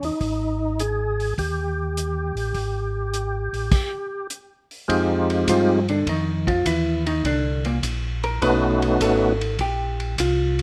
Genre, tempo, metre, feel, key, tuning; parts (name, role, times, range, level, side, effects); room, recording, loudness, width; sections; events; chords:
soul jazz organ trio; 102 BPM; 4/4; swing 69% on 8ths; A4 = 444 Hz
percussive tonewheel organ; melody; 0.0-9.3 s; Ab3 to Ab4; -25 LUFS; equal; slow rotary speaker, overdrive, chorus vibrato
mellow tonewheel organ; bass; 0.0-10.6 s; Ab1 to G2; -28 LUFS; equal; chorus vibrato, slow rotary speaker
warm soul drum kit; drums; 0.0-10.6 s; crash cymbal, hi-hat, kick drum, ride cymbal; -31 LUFS; equal
vintage hollow-body jazz guitar; accompaniment; 5.5-10.6 s; Bb2 to B4; -26 LUFS; equal
light reverb; -23 LUFS; mono
0.0-4.9 A section; 4.9-10.6 B section
hollow-body jazz guitar solo 4.9-10.6
0.2 Ab5; 4.9 Fm7; 7.2 Bbadd9; 8.4 B9; 9.6 Bbsus2